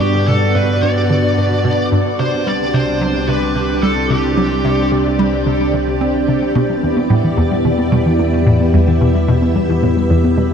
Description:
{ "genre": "ambient, sequencer-driven space music", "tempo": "110 BPM", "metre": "4/4", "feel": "straight", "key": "unclear", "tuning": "A4 = 441 Hz", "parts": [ { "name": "high-gain lead guitar", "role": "melody", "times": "0.0-4.9 s", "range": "G4 to D5", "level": "-22 LUFS", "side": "equal", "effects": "distortion, ping-pong delay" }, { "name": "string machine, full ensemble", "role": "sustained chords", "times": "0.0-10.5 s", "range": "B3 to E5", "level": "-17 LUFS", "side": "equal", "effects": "ensemble chorus" }, { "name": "hollow square pluck", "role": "riff", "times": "0.0-10.5 s", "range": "E2 to C4", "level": "-19 LUFS", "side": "right 1 dB", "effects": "chorus, phaser, ping-pong delay" }, { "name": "analog drone", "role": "bass", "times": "0.0-10.5 s", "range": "C2 to G2", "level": "-19 LUFS", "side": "equal", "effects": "chorus, tube saturation" }, { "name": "warbly dusty pluck", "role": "arpeggios", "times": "6.6-10.5 s", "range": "E3 to B3", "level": "-19 LUFS", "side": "left 2 dB", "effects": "chorus, auto-pan, cassette tape, ping-pong delay" } ], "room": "wet cathedral reverb, RT60 5.6 s", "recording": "dreamy mix soaked in reverb", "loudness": "-13 LUFS", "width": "side -7 dB against mid", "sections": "0.0-10.5 A section", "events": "none", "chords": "0.0 G; 2.2 Csus2; 6.6 Em7", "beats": "| 0.01 0.56 1.10 1.65 | 2.19 2.74 3.29 3.83 | 4.38 4.92 5.47 6.01 | 6.56 7.10 7.65 8.20 | 8.74 9.29 9.83 10.38" }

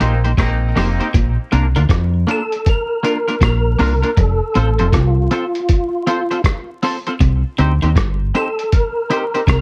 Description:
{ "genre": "roots reggae", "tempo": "79 BPM", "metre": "4/4", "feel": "swing 63% on 16ths", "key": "Bb major", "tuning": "A4 = 439 Hz", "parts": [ { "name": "clear horn section", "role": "second line", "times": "0.0-1.1 s", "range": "Bb3 to Eb4", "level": "-27 LUFS", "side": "equal", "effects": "tape echo" }, { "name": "semi-hollow electric guitar", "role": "accompaniment", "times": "0.0-9.4 s", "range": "Bb3 to C5", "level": "-22 LUFS", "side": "equal", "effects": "lush chorus" }, { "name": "clean electric guitar", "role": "riff", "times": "0.0-9.6 s", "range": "F2 to F3", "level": "-24 LUFS", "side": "equal", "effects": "none" }, { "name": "deep dub fingered electric bass", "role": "bass", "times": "0.0-9.6 s", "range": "F1 to F2", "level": "-19 LUFS", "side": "equal", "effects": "none" }, { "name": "lo-fi sampler-style drum kit", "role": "drums", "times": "0.0-9.6 s", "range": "hi-hat, kick drum, rim click", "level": "-20 LUFS", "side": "equal", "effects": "none" }, { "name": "percussive tonewheel organ", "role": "melody", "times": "2.3-9.6 s", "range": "F4 to Bb4", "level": "-23 LUFS", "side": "equal", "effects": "chorus vibrato, fast rotary speaker" } ], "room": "light reverb", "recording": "vinyl crackle", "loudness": "-17 LUFS", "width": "mono", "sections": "0.0-1.1 A section; 1.1-9.6 B section", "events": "band accent 0.0-1.1", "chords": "0.0 Cm7; 1.1 Bb; 4.2 F; 7.2 Cm", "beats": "0.38 | 1.14 1.90 2.66 3.42 | 4.17 4.93 5.69 6.45 | 7.21 7.96 8.72 9.48" }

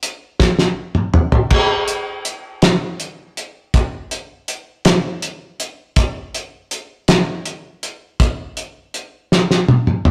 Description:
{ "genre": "rock", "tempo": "54 BPM (dotted quarters)", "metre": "6/8", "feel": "straight", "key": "none", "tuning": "none", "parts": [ { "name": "cloth-damped thuddy drum kit", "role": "drums", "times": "0.0-10.1 s", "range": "crash cymbal, hi-hat, kick drum, snare drum, toms", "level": "-17 LUFS", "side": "equal", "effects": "none" } ], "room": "moderate stone room reverb, RT60 1.1 s", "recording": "rough rehearsal-room recording, tube saturation", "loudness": "-18 LUFS", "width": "mono", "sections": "0.0-1.5 A section; 1.5-10.1 B section", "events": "drum fill 0.4-1.5, 9.3-10.1", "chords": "none", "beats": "0.41 | 1.52 2.63 | 3.75 4.86 | 5.97 7.09 | 8.20 9.32" }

